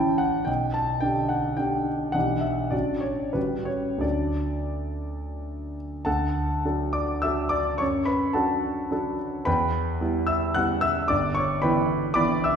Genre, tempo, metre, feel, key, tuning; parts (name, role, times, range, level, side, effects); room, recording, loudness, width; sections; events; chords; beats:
classical, romantic character piece for solo piano; 83-116 BPM; 3/4; rubato; D major; A4 = 440 Hz
warm concert grand piano; solo; 0.0-12.6 s; G1 to F#6; -23 LUFS; equal
wet recital hall reverb, RT60 1.3 s; heard from further back in the room; -23 LUFS; side -7 dB against mid
0.0-6.1 A section; 6.1-12.6 A section
0.5 G/B; 2.1 Em7/B; 2.7 D/A; 3.4 A13; 4.0 D; 7.8 D/F#; 9.5 Em; 11.1 Em/G
| 0.48 1.04 1.59 | 2.15 2.73 3.35 | 4.03 4.75 5.43 | 6.07 6.65 7.23 | 7.81 8.36 8.91 | 9.46 10.01 10.57 | 11.11 11.64 12.17